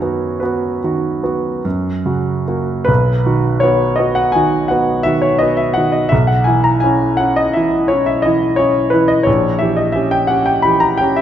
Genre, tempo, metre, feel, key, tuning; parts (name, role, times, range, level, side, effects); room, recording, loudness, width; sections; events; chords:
classical, romantic nocturne for solo piano; 47-60 BPM (dotted quarters); 9/8; rubato; B major; A4 = 440 Hz
clear concert grand piano; solo; 0.0-11.2 s; A#1 to B5; -13 LUFS; equal
wet recital hall reverb, RT60 1.6 s; -13 LUFS; side -10 dB against mid
0.0-2.9 A section; 2.9-11.2 A section
0.0 B/F#; 1.6 F#; 2.9 B; 6.1 C#m7/B; 9.3 A#dim7